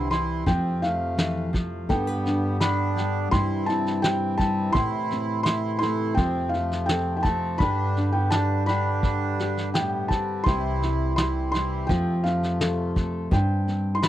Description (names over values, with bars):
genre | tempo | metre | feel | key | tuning
folk | 84 BPM | 4/4 | straight | unclear | A4 = 438 Hz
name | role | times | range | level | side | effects
felt-muted upright piano | melody | 0.0-14.1 s | F5 to C6 | -28 LUFS | equal | none
accordion | second line | 0.0-12.9 s | A3 to E4 | -32 LUFS | right 6 dB | none
nylon-string guitar | accompaniment | 0.0-14.1 s | G2 to C5 | -28 LUFS | left 2 dB | none
hand-pumped harmonium | sustained chords | 0.0-13.3 s | C3 to F5 | -34 LUFS | left 1 dB | none
upright bass | bass | 0.0-14.1 s | C2 to A2 | -28 LUFS | equal | none
vintage brush drum kit | drums | 0.1-14.1 s | kick drum, snare drum | -26 LUFS | equal | none
room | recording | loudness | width
little or no reverb | dry, close 1970s-style studio recording | -22 LUFS | side -13 dB against mid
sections
0.0-14.1 A section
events
none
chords
0.5 F; 1.9 G; 3.3 C/G; 4.8 Am; 6.2 F; 7.6 G; 10.5 C; 11.9 F; 13.3 Gsus4